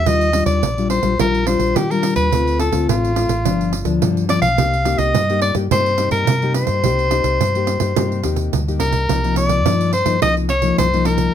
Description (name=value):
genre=samba and choro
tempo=106 BPM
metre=4/4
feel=straight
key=C minor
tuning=A4 = 436 Hz
part: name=clear soprano saxophone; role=melody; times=0.0-11.3 s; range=F4 to F5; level=-19 LUFS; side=left 1 dB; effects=none
part: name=nylon-string guitar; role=accompaniment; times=0.0-11.3 s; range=G2 to G4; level=-21 LUFS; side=left 6 dB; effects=none
part: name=hollow-body short-scale fingered electric bass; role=bass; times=0.0-11.3 s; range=G1 to Eb3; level=-21 LUFS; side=equal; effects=none
part: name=pandeiro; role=percussion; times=0.1-11.3 s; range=none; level=-22 LUFS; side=right 9 dB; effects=none
room=moderate small room reverb, RT60 0.5 s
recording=none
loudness=-15 LUFS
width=side -9 dB against mid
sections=0.0-9.1 A section; 9.1-11.3 B section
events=none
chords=0.1 Ebmaj9; 2.3 Dm7; 3.5 G7; 4.6 Cm7; 9.1 Cm11